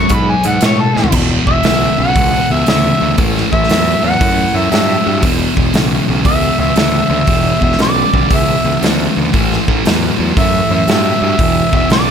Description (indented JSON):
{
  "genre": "blues rock power trio and southern rock",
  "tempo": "117 BPM",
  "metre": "4/4",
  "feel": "swing 66% on 8ths",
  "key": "E mixolydian",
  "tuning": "A4 = 440 Hz",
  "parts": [
    { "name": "mellow harmonica", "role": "melody", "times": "0.0-12.1 s", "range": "A4 to C#6", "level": "-16 LUFS", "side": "equal", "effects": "overdrive" },
    { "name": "thick fuzz guitar", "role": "riff", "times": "0.0-12.1 s", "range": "E2 to G#3", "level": "-15 LUFS", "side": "equal", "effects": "distortion" },
    { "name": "growling picked electric bass", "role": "bass", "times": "0.0-12.1 s", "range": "E1 to A2", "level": "-18 LUFS", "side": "equal", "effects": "overdrive" },
    { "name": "big rock drum kit", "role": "drums", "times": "0.1-12.1 s", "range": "crash cymbal, hi-hat, kick drum, snare drum, toms", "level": "-16 LUFS", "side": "equal", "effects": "none" }
  ],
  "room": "light reverb",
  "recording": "none",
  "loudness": "-10 LUFS",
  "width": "side -7 dB against mid",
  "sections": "0.0-1.1 A section; 1.1-12.1 A section",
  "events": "drum fill 0.9",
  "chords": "0.0 B7(no3); 1.1 E5; 3.2 A5; 5.2 E5; 9.3 A5; 11.4 E7(no3)"
}